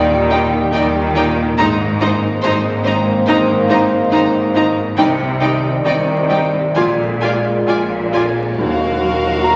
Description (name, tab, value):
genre	cinematic, emotional film score for orchestra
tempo	65-71 BPM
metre	4/4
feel	rubato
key	unclear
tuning	A4 = 441 Hz
part	warm baby grand piano	accompaniment	0.0-9.6 s	Bb1 to Bb5	-24 LUFS	equal	none
part	warm French horn section	sustained chords	0.0-9.6 s	Eb3 to D5	-22 LUFS	equal	none
part	rich studio cello section	bass	0.0-9.6 s	Eb2 to Eb3	-24 LUFS	equal	none
part	rich studio double bass section	bass	0.0-9.6 s	Ab1 to Eb2	-26 LUFS	equal	none
part	warm studio violin section	melody	0.3-9.6 s	F5 to Bb5	-25 LUFS	equal	none
part	rich studio violin section	second line	0.3-9.6 s	Bb4 to D5	-29 LUFS	equal	none
part	warm studio viola section	accompaniment	0.3-9.6 s	Eb4 to Gb4	-22 LUFS	equal	none
part	cymbal swell and tam-tam	percussion	5.0-9.6 s	none	-31 LUFS	equal	none
part	timpani	percussion	8.6-9.6 s	Eb3	-29 LUFS	equal	none
part	mellow small flute group	second line	9.4-9.6 s	Bb5	-16 LUFS	equal	none
room	wet concert hall reverb, RT60 1.8 s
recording	vinyl crackle, nothing above 8.0 kHz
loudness	-16 LUFS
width	mono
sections	0.0-8.6 A section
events	band accent 8.6-9.4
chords	0.0 Ebmaj7; 1.6 Abadd9; 5.0 Cmadd9; 6.8 Bb7; 8.6 Ebmadd9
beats	0.74 | 1.59 2.43 3.28 4.12 | 4.98 5.85 6.76 7.67 | 8.58 9.44